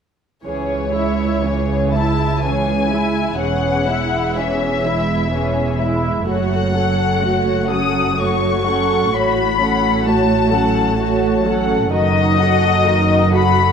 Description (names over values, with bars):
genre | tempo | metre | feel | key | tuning
classical, slow romantic movement for string orchestra | 63 BPM | 3/4 | rubato | C# minor | A4 = 441 Hz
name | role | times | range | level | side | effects
muted studio viola section | accompaniment | 0.4-13.7 s | D#3 to F#4 | -21 LUFS | right 3 dB | none
muted studio cello section | bass | 0.4-13.7 s | C#2 to A2 | -22 LUFS | right 2 dB | none
muted studio violin section | melody | 0.5-13.7 s | C#5 to D#6 | -20 LUFS | left 7 dB | none
muted studio violin section | second line | 0.5-13.7 s | E4 to F#5 | -22 LUFS | left 2 dB | none
muted studio double bass section | bass | 0.5-13.7 s | E1 to C#2 | -23 LUFS | right 4 dB | none
room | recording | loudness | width
wet scoring stage reverb, RT60 1.6 s | none | -15 LUFS | side -7 dB against mid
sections
0.4-13.7 A section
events
none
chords
0.4 C#m; 3.4 C#m/E; 6.3 F#m; 9.1 F#m/A; 11.9 D#dim/F#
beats
| 0.45 1.44 2.43 | 3.40 4.38 5.33 | 6.28 7.22 8.18 | 9.14 10.08 11.00 | 11.93 12.86